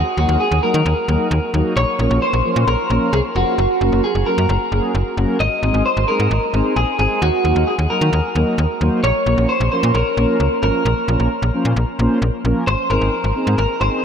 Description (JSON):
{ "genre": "synth-pop", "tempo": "132 BPM", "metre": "4/4", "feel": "straight", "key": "Bb minor", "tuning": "A4 = 440 Hz", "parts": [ { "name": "electric guitar at the edge of break-up", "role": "melody", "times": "0.0-14.0 s", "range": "Gb4 to Eb5", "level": "-19 LUFS", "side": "equal", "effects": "lush chorus, ping-pong delay" }, { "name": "slap-like FM bass", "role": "bass", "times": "0.0-13.9 s", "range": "F1 to Eb3", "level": "-18 LUFS", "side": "equal", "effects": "none" }, { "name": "mellow synth brass", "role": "accompaniment", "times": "0.2-14.0 s", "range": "F3 to C5", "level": "-21 LUFS", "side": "equal", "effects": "chorus" } ], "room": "wet huge ambient reverb, RT60 8.0 s", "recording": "dreamy mix soaked in reverb", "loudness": "-15 LUFS", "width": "side -7 dB against mid", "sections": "0.0-12.7 A section; 12.7-14.0 B section", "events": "none", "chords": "0.0 Ebm; 1.8 Bbm; 3.6 Gb; 5.4 Ab; 7.2 Ebm; 9.0 Bbm; 12.7 Ab" }